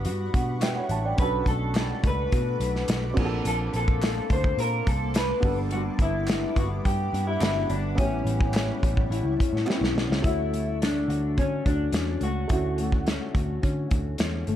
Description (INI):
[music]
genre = indie pop, bedroom pop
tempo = 106 BPM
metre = 4/4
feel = straight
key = D major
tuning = A4 = 438 Hz
[part]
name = nylon-string guitar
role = accompaniment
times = 0.0-14.6 s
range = A2 to C5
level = -33 LUFS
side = left 4 dB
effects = wide subtle chorus, warbly pitch drift
[part]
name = warm upright piano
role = accompaniment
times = 0.0-14.6 s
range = A3 to A5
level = -34 LUFS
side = right 4 dB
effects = none
[part]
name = shimmering ambient pad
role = sustained chords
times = 0.0-10.2 s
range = G3 to D6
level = -39 LUFS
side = left 1 dB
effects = chorus, built-in reverb
[part]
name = vintage muted picked electric bass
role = bass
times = 0.0-14.6 s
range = G1 to D3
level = -29 LUFS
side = equal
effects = none
[part]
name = loose indie drum kit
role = drums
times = 0.0-14.6 s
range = crash cymbal, hi-hat, kick drum, snare drum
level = -26 LUFS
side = equal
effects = none
[part]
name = group handclap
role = percussion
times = 0.6-9.8 s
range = none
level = -41 LUFS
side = right 2 dB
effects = none
[part]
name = electric guitar through a small old amp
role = melody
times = 1.2-13.3 s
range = C#4 to C5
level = -30 LUFS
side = left 1 dB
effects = lush chorus, tape echo
[sound]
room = light reverb, studio reverb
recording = cassette tape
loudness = -23 LUFS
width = side -11 dB against mid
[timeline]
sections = 0.0-10.2 A section; 10.2-14.6 B section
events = upright piano fill 0.1-1.2; drum fill 9.7-10.2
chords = 0.0 Gmaj7; 1.2 Bm7; 3.2 Bbmaj9; 5.4 Gmaj7; 8.0 A7; 10.2 Dmaj7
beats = 0.05 0.62 | 1.19 1.75 2.32 2.88 | 3.45 4.02 4.58 5.15 | 5.71 6.28 6.84 7.41 | 7.97 8.54 9.11 9.67 | 10.24 10.80 11.37 11.93 | 12.50 13.07 13.63 14.20